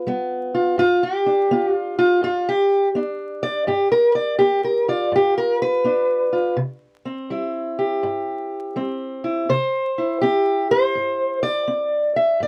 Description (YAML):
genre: acoustic country blues, solo or duo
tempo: 83 BPM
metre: 4/4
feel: swing 64% on 8ths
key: unclear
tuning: A4 = 445 Hz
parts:
  - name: fingerpicked steel-string acoustic guitar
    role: solo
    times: 0.0-12.5 s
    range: G2 to E5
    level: -20 LUFS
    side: equal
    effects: none
room: light reverb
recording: dry, close 1970s-style studio recording, vinyl crackle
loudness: -21 LUFS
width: mono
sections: 0.0-12.5 A section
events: steel-string acoustic guitar solo 0.0-12.5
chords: 0.0 G7; 6.6 C